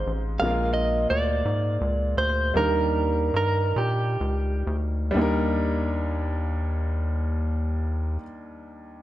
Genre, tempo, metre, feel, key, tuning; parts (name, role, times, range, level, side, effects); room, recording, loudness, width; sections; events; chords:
slow gospel; 40-58 BPM (dotted quarters); 6/8; straight; Eb major; A4 = 441 Hz
clean electric guitar; melody; 0.0-4.8 s; G4 to F5; -26 LUFS; right 2 dB; harmonic tremolo, slapback echo
warm upright piano; accompaniment; 0.0-9.0 s; Eb2 to C5; -29 LUFS; equal
rubbery square bass; bass; 0.0-8.2 s; A1 to Bb2; -26 LUFS; equal
light reverb; -22 LUFS; side -14 dB against mid
0.0-5.2 A section; 5.2-9.0 B section
slowing down 0.4-5.2
0.4 Bb7; 2.6 Ebmaj7